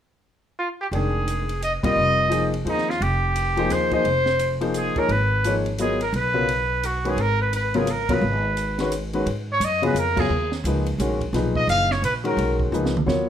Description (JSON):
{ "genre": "modal jazz", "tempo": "173 BPM", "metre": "3/4", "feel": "swing 62% on 8ths", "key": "G# dorian from 9.3 s", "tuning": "A4 = 440 Hz", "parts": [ { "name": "warm trumpet", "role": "melody", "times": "0.6-12.6 s", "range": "Eb4 to E#5", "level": "-23 LUFS", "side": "equal", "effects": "plate reverb" }, { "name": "clear grand piano", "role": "accompaniment", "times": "0.9-13.3 s", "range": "A#2 to G5", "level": "-24 LUFS", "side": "left 3 dB", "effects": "none" }, { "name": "upright bass", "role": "bass", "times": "0.9-13.3 s", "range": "E1 to G#2", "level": "-26 LUFS", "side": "right 1 dB", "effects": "none" }, { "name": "compact cocktail drum kit", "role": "drums", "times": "0.9-13.2 s", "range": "crash cymbal, hi-hat, kick drum, ride cymbal, snare drum, toms", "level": "-32 LUFS", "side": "right 2 dB", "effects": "none" } ], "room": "moderate studio reverb, RT60 0.7 s", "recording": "none", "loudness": "-20 LUFS", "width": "side -9 dB against mid", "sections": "0.9-9.3 A section; 9.3-13.3 B section", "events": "band accent 1.8, 8.0, 10.1; drum fill 12.7-13.1", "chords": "0.0 N.C.; 0.9 Fm9; 5.1 Abm9; 9.3 G#m11", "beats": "0.23 0.58 | 0.93 1.27 1.62 | 1.97 2.32 2.66 | 3.01 3.36 3.71 | 4.05 4.40 4.75 | 5.10 5.44 5.79 | 6.14 6.49 6.83 | 7.18 7.53 7.87 | 8.22 8.57 8.91 | 9.26 9.61 9.96 | 10.30 10.65 10.99 | 11.34 11.69 12.04 | 12.38 12.73 13.07" }